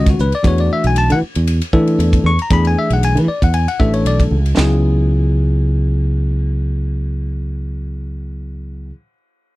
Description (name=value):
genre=electric jazz fusion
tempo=116 BPM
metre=4/4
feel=swing 54% on 16ths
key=C# phrygian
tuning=A4 = 439 Hz
part: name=bell-like tine electric piano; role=accompaniment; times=0.0-8.9 s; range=D#3 to C#6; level=-19 LUFS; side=left 2 dB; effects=none
part: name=fretless electric bass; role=bass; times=0.0-8.9 s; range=A1 to E3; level=-16 LUFS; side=right 1 dB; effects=none
part: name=crisp fusion drum kit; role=drums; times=0.1-4.7 s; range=hi-hat, kick drum, ride cymbal, snare drum, splash cymbal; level=-20 LUFS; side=right 1 dB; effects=none
room=little or no reverb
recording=none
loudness=-13 LUFS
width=side -18 dB against mid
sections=0.0-4.6 A section; 4.6-8.7 B section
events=none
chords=0.4 E9sus4; 4.6 C#m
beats=| 0.44 0.96 1.47 1.99 | 2.50 3.02 3.54 4.05 | 4.57 5.09 5.60 6.12 | 6.64 7.15 7.67 8.18